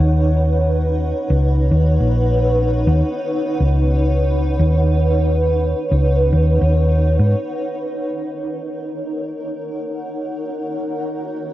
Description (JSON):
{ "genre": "ambient dub", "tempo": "104 BPM", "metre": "4/4", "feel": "swing 55% on 16ths", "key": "Eb minor", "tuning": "A4 = 440 Hz", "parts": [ { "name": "granular cloud pad", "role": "sustained chords", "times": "0.0-11.5 s", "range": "Eb4 to F#5", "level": "-21 LUFS", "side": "equal", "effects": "built-in reverb, cassette tape" }, { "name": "hollow-body short-scale fingered electric bass", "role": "bass", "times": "0.0-7.3 s", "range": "Bb1 to Ab2", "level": "-15 LUFS", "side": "equal", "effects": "none" } ], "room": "light reverb", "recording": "home recording on cassette", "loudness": "-16 LUFS", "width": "side -14 dB against mid", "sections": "0.0-7.5 A section; 7.5-11.5 B section", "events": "none", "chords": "0.0 Bsus2; 7.5 Ebm7" }